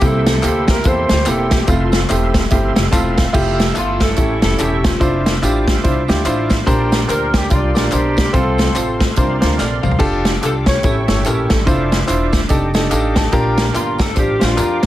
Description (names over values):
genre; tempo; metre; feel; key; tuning
uptempo gospel; 144 BPM; 4/4; swing 60% on 8ths; F major; A4 = 440 Hz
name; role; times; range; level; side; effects
dark saxophone section; melody; 0.0-14.9 s; A3 to Db5; -21 LUFS; left 1 dB; none
clear grand piano; accompaniment; 0.0-14.9 s; A2 to A5; -19 LUFS; equal; none
bright tonewheel organ; sustained chords; 0.0-14.9 s; Bb3 to E6; -28 LUFS; right 2 dB; fast rotary speaker, overdrive, chorus vibrato
upright bass; bass; 0.0-14.9 s; E1 to F2; -20 LUFS; equal; none
natural country drum kit; drums; 0.0-14.9 s; crash cymbal, hi-hat, kick drum, snare drum, toms; -17 LUFS; equal; none
tambourine and handclaps; percussion; 0.0-14.9 s; none; -30 LUFS; left 2 dB; none
room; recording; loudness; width
light reverb, small room ambience; none; -13 LUFS; side -14 dB against mid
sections
0.0-3.3 A section; 3.3-14.9 B section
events
grand piano fill 2.7-3.3, 12.7-13.3; drum fill 9.6-10.0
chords
0.0 C7; 1.7 Fmaj7; 3.3 Fmaj9; 4.2 A7; 5.0 Dm9/F; 6.7 Bb69; 8.3 F/C; 9.2 C9sus4; 10.0 F69; 10.8 A7; 11.7 Dm9/F; 12.5 F13; 13.3 Bb6